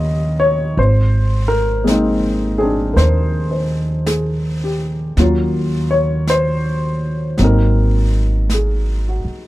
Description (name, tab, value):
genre	jazz ballad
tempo	55 BPM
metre	4/4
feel	swing 66% on 8ths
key	unclear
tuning	A4 = 441 Hz
part	warm baby grand piano	accompaniment	0.0-9.5 s	Gb3 to Eb5	-18 LUFS	left 1 dB	none
part	upright bass	bass	0.0-9.3 s	Ab1 to Eb2	-16 LUFS	right 1 dB	none
part	jazz brush drum kit	drums	0.8-9.5 s	brushed snare drum, hi-hat, snare drum	-30 LUFS	right 1 dB	none
room	little or no reverb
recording	dry, close 1970s-style studio recording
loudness	-14 LUFS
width	side -16 dB against mid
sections	0.0-9.5 A section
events	none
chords	0.0 Eb9; 0.8 Ab; 5.2 Ebm7; 7.4 Ab9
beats	| 0.78 1.87 2.97 4.07 | 5.17 6.27 7.38 8.49